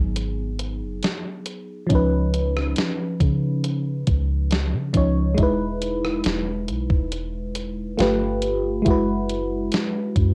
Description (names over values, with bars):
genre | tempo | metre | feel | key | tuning
contemporary R&B | 69 BPM | 4/4 | straight | unclear | A4 = 440 Hz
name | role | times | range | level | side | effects
FM electric piano | accompaniment | 0.0-10.3 s | E#3 to C#5 | -26 LUFS | equal | phaser
soft 808-style bass | bass | 0.0-10.3 s | E1 to C#3 | -27 LUFS | equal | tube saturation
crisp 8-bit digital drum machine | drums | 0.2-10.3 s | hi-hat, kick drum, rim click, snare drum | -26 LUFS | equal | none
room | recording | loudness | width
little or no reverb | home recording on cassette | -23 LUFS | mono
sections
0.0-10.3 A section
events
none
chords
0.0 G#m7; 1.9 C#9; 5.4 Emaj7; 8.0 G9; 8.9 F#9sus4